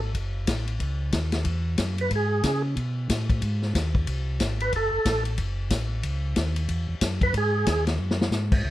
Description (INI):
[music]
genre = soul jazz organ trio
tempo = 183 BPM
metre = 4/4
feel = swing 61% on 8ths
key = C# minor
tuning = A4 = 441 Hz
[part]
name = mellow tonewheel organ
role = bass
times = 0.0-8.7 s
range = F#1 to C#3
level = -26 LUFS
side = equal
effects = slow rotary speaker
[part]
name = vintage drum kit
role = drums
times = 0.1-8.7 s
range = crash cymbal, hi-hat, kick drum, ride cymbal, snare drum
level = -27 LUFS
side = left 2 dB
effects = none
[part]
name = percussive tonewheel organ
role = melody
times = 2.0-7.8 s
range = G#4 to B4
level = -26 LUFS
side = right 2 dB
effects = slow rotary speaker, overdrive, chorus vibrato
[sound]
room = little or no reverb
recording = none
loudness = -23 LUFS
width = side -15 dB against mid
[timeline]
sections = 0.0-8.6 A section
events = tonewheel organ solo 0.0-8.6; drum fill 8.0-8.3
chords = 0.0 F#m; 0.8 C#m9; 3.4 G#; 4.7 F#m; 6.0 C#madd9; 7.3 G#5